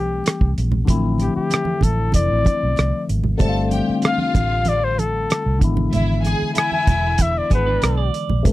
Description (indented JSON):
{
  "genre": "lush 1970s-style soul",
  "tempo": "95 BPM",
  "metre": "4/4",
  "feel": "straight",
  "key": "unclear",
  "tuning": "A4 = 443 Hz",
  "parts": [
    { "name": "warm flugelhorn", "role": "melody", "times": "0.0-8.1 s", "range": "G4 to G#5", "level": "-22 LUFS", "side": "left 3 dB", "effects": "none" },
    { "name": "barky tine electric piano", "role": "accompaniment", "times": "0.0-8.5 s", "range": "C3 to G4", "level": "-24 LUFS", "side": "left 4 dB", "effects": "phaser" },
    { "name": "vintage muted fingered electric bass", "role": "bass", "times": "0.0-8.5 s", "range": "E1 to C2", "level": "-21 LUFS", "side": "right 1 dB", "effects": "none" },
    { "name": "congas", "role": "percussion", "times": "0.2-8.5 s", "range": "none", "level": "-27 LUFS", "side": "right 4 dB", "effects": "none" },
    { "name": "cloth-damped thuddy drum kit", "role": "drums", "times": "0.3-8.5 s", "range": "hi-hat, kick drum, rim click", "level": "-18 LUFS", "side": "right 1 dB", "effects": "none" },
    { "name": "warm symphonic string section", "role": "second line", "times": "3.4-7.5 s", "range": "E4 to A5", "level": "-27 LUFS", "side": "right 1 dB", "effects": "none" },
    { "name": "electric guitar through a small old amp", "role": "riff", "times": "7.5-8.4 s", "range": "B3 to D5", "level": "-26 LUFS", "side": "right 9 dB", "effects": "none" }
  ],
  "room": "little or no reverb",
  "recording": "dry, close 1970s-style studio recording",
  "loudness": "-16 LUFS",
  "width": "side -16 dB against mid",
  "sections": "0.0-8.5 A section",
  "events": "none",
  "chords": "0.0 Am7; 0.9 Dm9/A; 3.4 G9sus4; 5.6 E7",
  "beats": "0.24 | 0.88 1.51 2.14 2.77 | 3.40 4.03 4.67 5.30 | 5.93 6.56 7.19 7.82 | 8.45"
}